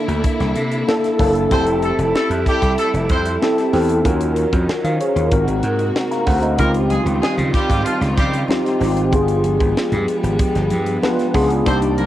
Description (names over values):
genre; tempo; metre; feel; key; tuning
polished 1980s jazz-funk pop; 95 BPM; 4/4; straight; unclear; A4 = 440 Hz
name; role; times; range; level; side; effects
mellow tine electric piano; accompaniment; 0.0-12.1 s; Bb3 to Bb5; -18 LUFS; left 1 dB; fast stereo tremolo, ensemble chorus, cassette tape
warm symphonic string section; sustained chords; 0.0-12.1 s; C3 to D5; -26 LUFS; right 1 dB; cassette tape
gritty slap bass; bass; 0.1-12.1 s; F1 to Eb3; -20 LUFS; equal; overdrive
tight funk drum kit; drums; 0.1-12.1 s; hi-hat, kick drum, snare drum; -22 LUFS; equal; cassette tape
clear horn section; second line; 1.5-12.1 s; F3 to C5; -23 LUFS; right 1 dB; cassette tape
congas; percussion; 6.6-12.1 s; none; -30 LUFS; right 1 dB; none
room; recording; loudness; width
light reverb; home recording on cassette; -15 LUFS; side -13 dB against mid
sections
0.0-12.1 A section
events
none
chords
0.0 C13; 1.5 Fmaj9; 4.1 Ebm9; 5.3 Ab9; 6.6 Dbmaj9#11; 9.1 G7b9